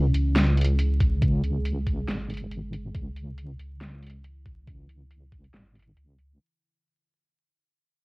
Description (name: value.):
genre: deep dubstep.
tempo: 139 BPM.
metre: 4/4.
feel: swing 55% on 16ths, half-time.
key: C# minor.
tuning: A4 = 441 Hz.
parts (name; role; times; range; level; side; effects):
deep dark ambient pad; sustained chords; 0.0-6.4 s; C#4 to G#4; -34 LUFS; right 1 dB; chorus, built-in reverb, cassette tape.
deep soft wobble bass; bass; 0.0-6.4 s; G#1 to C#2; -25 LUFS; equal; chorus.
dubstep drum kit; drums; 0.1-6.3 s; hi-hat, snare drum; -28 LUFS; equal; low-pass filter on hats, studio reverb, cassette tape, low-pass filter on snare.
electronic kick drum; drums; 1.0-5.4 s; none; -25 LUFS; equal; studio reverb, cassette tape.
room: little or no reverb.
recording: home recording on cassette, vinyl crackle.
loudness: -23 LUFS.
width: side -26 dB against mid.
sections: 0.0-6.4 A section.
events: fade-out 0.0-6.4; filter sweep on ambient pad 0.0-6.4.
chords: 0.0 C#m.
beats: 0.36 0.79 | 1.22 1.65 2.08 2.51 | 2.95 3.38 3.81 4.24 | 4.67 5.10 5.54 5.97.